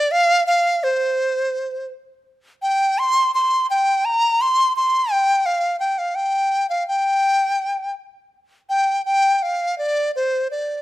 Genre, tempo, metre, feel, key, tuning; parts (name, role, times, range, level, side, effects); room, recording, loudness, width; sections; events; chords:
chinese traditional, Chinese chamber ensemble; 84 BPM; 2/4; rubato; G yu mode; A4 = 440 Hz
hollow dizi; solo; 0.0-10.8 s; C5 to C6; -17 LUFS; equal
light reverb; close, detailed microphones; -17 LUFS; side -16 dB against mid
0.0-8.3 A section; 8.3-10.8 B section